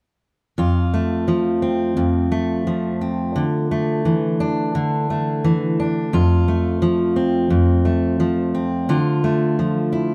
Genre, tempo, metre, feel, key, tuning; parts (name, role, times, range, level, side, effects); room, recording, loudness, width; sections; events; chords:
pop; 87 BPM; 4/4; straight; F major; A4 = 440 Hz
fingerpicked steel-string acoustic guitar; accompaniment; 0.6-10.1 s; F2 to F4; -19 LUFS; equal
moderate plate reverb, RT60 2.6 s; -20 LUFS; mono
0.6-10.1 A section
0.6 F; 3.4 Dsus2; 6.1 F; 8.9 Dmadd9